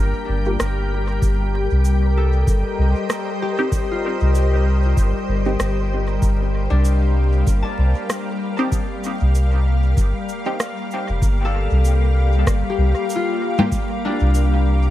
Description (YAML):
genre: ambient dub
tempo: 96 BPM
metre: 4/4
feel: swing 58% on 16ths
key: G minor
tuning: A4 = 440 Hz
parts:
  - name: soft additive organ-like pad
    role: sustained chords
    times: 0.0-14.9 s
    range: G3 to G5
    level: -25 LUFS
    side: left 2 dB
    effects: ensemble chorus, built-in reverb
  - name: concert harp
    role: arpeggios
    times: 0.0-14.9 s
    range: D4 to A5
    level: -28 LUFS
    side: left 4 dB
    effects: tape echo
  - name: soft dub sub bass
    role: bass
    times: 0.0-14.9 s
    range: F1 to C2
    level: -17 LUFS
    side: equal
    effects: none
  - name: bubbling stepped-filter texture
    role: texture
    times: 0.0-11.2 s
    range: Bb4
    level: -32 LUFS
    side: left 1 dB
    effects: chorus, built-in reverb
  - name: filtered dub chord stab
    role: stabs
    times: 0.5-13.7 s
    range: Bb3 to G4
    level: -28 LUFS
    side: equal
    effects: phaser, dub echo
  - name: electronic rim click, shaker and congas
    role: drums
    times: 0.6-14.5 s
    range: none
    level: -24 LUFS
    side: left 1 dB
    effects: dub echo
  - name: electronic kick drum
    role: drums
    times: 1.2-13.9 s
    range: none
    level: -21 LUFS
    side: equal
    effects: overdrive
room: light reverb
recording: vinyl crackle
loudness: -17 LUFS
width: side -14 dB against mid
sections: 0.0-11.2 A section; 11.2-14.9 B section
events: none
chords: 0.0 Gm7; 1.2 Cm/G; 11.2 Gm7